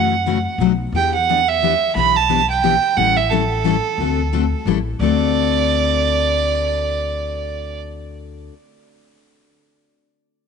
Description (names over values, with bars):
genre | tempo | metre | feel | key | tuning
acoustic string swing (jazz manouche) | 177 BPM | 3/4 | swing 60% on 8ths | D mixolydian | A4 = 440 Hz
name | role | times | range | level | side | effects
warm violin | melody | 0.0-7.8 s | A4 to B5 | -18 LUFS | right 7 dB | none
picked steel-string acoustic guitar | accompaniment | 0.0-8.5 s | B2 to A4 | -21 LUFS | left 13 dB | none
upright bass | bass | 0.0-8.5 s | A1 to F#2 | -24 LUFS | left 1 dB | none
room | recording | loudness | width
moderate plate reverb, RT60 3.5 s | 1960s-style stereo with parts hard left and right, nothing above 11.0 kHz | -15 LUFS | side -6 dB against mid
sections
0.0-5.0 A section; 5.0-7.0 B section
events
none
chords
0.0 F#m7; 0.6 B7; 0.9 Em7; 3.0 A7; 4.0 D7; 4.7 A7; 5.0 D7